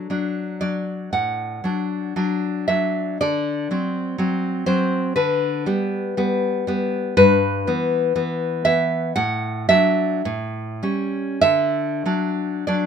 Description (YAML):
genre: romantic piece for solo classical guitar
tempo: 48-63 BPM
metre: 4/4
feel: rubato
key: D major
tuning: A4 = 440 Hz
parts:
  - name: nylon-string guitar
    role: solo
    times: 0.0-12.9 s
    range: G2 to F#5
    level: -19 LUFS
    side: equal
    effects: none
room: light reverb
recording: minimal, uncompressed stereo recording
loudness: -19 LUFS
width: side -7 dB against mid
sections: 0.0-12.9 A section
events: none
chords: 0.0 D; 3.2 D7; 5.2 G/D; 7.2 Em/G; 9.2 D/A; 10.3 A7; 11.4 D